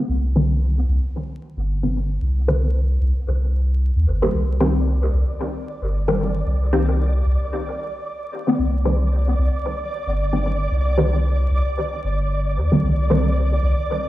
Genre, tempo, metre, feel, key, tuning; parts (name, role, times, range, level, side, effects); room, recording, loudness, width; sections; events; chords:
dub techno; 113 BPM; 4/4; swing 56% on 16ths; C minor; A4 = 440 Hz
filtered dub chord stab; stabs; 0.0-14.1 s; Eb3 to C4; -23 LUFS; equal; phaser, dub echo
soft dub sub bass; bass; 0.1-13.8 s; G1 to Eb2; -19 LUFS; equal
flickering grainy texture; texture; 4.5-14.1 s; D5; -29 LUFS; right 1 dB; built-in reverb
light reverb; played on a big sound system in a bare room, large studio reverb, vinyl crackle; -18 LUFS; side -15 dB against mid
0.0-14.1 A section
filter sweep on synth stab 0.0-14.1
0.0 Cm7